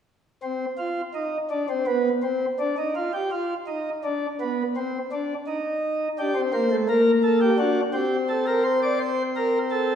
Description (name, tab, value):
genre	classical, baroque-style 3-part fugue for pipe organ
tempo	84 BPM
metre	4/4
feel	straight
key	unclear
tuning	A4 = 436 Hz
part	pipe organ, principal chorus	solo	0.4-10.0 s	A3 to D5	-22 LUFS	equal	none
room	wet scoring stage reverb, RT60 1.6 s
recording	heard from further back in the room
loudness	-22 LUFS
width	side -8 dB against mid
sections	0.4-10.0 A section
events	none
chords	0.4 N.C.; 6.2 Gm; 7.6 D; 9.0 F#dim/C (rootless)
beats	| 0.42 1.15 1.88 2.60 | 3.32 4.04 4.75 5.47 | 6.18 6.88 7.59 8.30 | 9.01 9.72